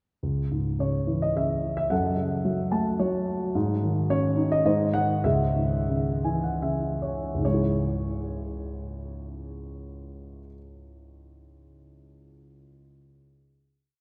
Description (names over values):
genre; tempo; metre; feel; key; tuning
classical, lyrical solo piano; 70-112 BPM; 3/4; rubato; C# minor; A4 = 439 Hz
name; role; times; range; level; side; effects
dark concert grand piano; solo; 0.2-14.0 s; C#2 to A5; -27 LUFS; equal; none
room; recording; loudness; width
wet cathedral reverb, RT60 5.4 s; recorded in a church or concert hall; -26 LUFS; mono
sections
0.2-7.4 A section; 7.4-12.4 final chord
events
grand piano fill 2.5-3.6, 5.9-7.4; slowing down 3.6-7.4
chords
0.2 C#m; 1.9 F#m; 3.6 G#sus4; 4.7 G#; 5.2 C#m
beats
| 0.23 0.80 1.36 | 1.91 2.46 3.01 | 3.55 4.10 4.65 | 5.25 5.89 6.62 | 7.44 8.29 9.12 | 9.93 10.72 11.53